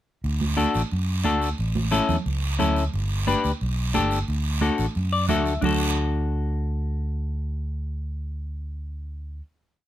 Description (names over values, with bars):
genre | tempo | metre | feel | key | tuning
latin, cumbia | 178 BPM | 4/4 | straight | D major | A4 = 440 Hz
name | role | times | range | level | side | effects
fingered electric bass | bass | 0.2-9.4 s | G1 to F#2 | -25 LUFS | equal | none
guiro | percussion | 0.2-5.7 s | none | -34 LUFS | right 5 dB | none
congas | percussion | 0.4-5.7 s | none | -29 LUFS | right 6 dB | none
semi-hollow electric guitar | accompaniment | 0.6-9.4 s | C#4 to E5 | -24 LUFS | left 5 dB | none
room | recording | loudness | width
light reverb | close, detailed microphones | -22 LUFS | side -13 dB against mid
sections
0.2-5.6 groove; 5.6-8.3 final chord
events
clean electric guitar fill 5.0-5.6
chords
0.2 D; 1.6 A; 2.9 G; 4.3 D